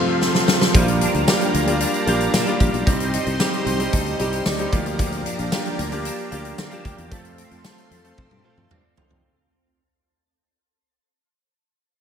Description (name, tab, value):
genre	1980s-style pop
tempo	113 BPM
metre	4/4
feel	straight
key	F mixolydian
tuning	A4 = 441 Hz
part	clear concert grand piano	accompaniment	0.0-9.4 s	C3 to C6	-24 LUFS	equal	shimmer reverb
part	phased analog pad	sustained chords	0.0-9.2 s	G4 to C6	-29 LUFS	left 1 dB	phaser, chorus, shimmer reverb
part	big rock drum kit	drums	0.2-9.2 s	hi-hat, kick drum, snare drum, tambourine, toms	-22 LUFS	equal	gated reverb
part	twelve-string electric guitar	riff	0.7-9.8 s	F3 to G4	-29 LUFS	right 4 dB	ensemble chorus, digital delay, shimmer reverb
part	sustaining fretless electric bass	bass	0.7-9.2 s	Bb1 to D3	-26 LUFS	equal	none
room	light reverb, studio ambience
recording	none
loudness	-18 LUFS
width	side -8 dB against mid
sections	0.7-9.2 A section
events	grand piano fill 0.0-0.7, 3.4-5.0; band accent 0.0-0.7; drum fill 0.2-0.7, 8.2-9.2; fade-out 0.7-9.2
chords	0.0 F; 0.7 Bb6; 2.9 Cm; 4.7 Bb6; 7.1 F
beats	0.21 | 0.74 1.27 1.81 2.34 | 2.87 3.40 3.93 4.46 | 4.99 5.52 6.05 6.58 | 7.12 7.65 8.18 8.71